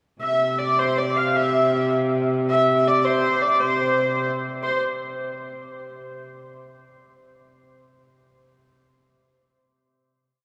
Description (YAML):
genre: medieval dance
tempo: 104-121 BPM (dotted quarters)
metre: 6/8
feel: straight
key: C major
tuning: A4 = 438 Hz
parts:
  - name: clear hurdy-gurdy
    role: melody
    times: 0.2-4.8 s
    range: C5 to F5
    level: -23 LUFS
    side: equal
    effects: none
  - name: rich viola da gamba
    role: drone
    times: 0.2-4.7 s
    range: C3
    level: -28 LUFS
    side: equal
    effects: none
room: wet cathedral reverb, RT60 5.9 s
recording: heard from further back in the room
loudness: -21 LUFS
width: mono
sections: 0.2-4.6 A section; 4.6-5.6 final note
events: speeding up 0.2-5.6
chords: none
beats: | 0.21 0.79 | 1.36 1.93 | 2.48 3.04 | 3.58 4.11 | 4.63